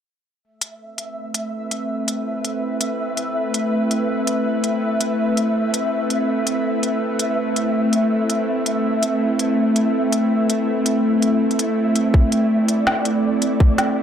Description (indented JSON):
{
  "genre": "half-time drum and bass",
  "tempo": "164 BPM",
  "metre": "4/4",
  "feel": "half-time",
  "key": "A minor",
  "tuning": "A4 = 440 Hz",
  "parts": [
    { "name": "bowed-like drone", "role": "sustained chords", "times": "1.2-14.0 s", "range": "A3 to C5", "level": "-19 LUFS", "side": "equal", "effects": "built-in reverb, sidechain pumping" },
    { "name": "flickering grainy texture", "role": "texture", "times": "0.7-14.0 s", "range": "D5 to E5", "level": "-26 LUFS", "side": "equal", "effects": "built-in reverb" },
    { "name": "organic electronic drum kit", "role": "drums", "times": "0.6-13.9 s", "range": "hi-hat, snare drum", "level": "-23 LUFS", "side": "left 1 dB", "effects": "none" },
    { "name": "electronic kick drum", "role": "drums", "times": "12.1-13.7 s", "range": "none", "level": "-13 LUFS", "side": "equal", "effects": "none" }
  ],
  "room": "moderate echo chamber reverb, RT60 2.2 s",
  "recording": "none",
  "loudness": "-18 LUFS",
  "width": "side -8 dB against mid",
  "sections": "0.4-14.0 A section",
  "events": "none",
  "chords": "0.4 Amadd9"
}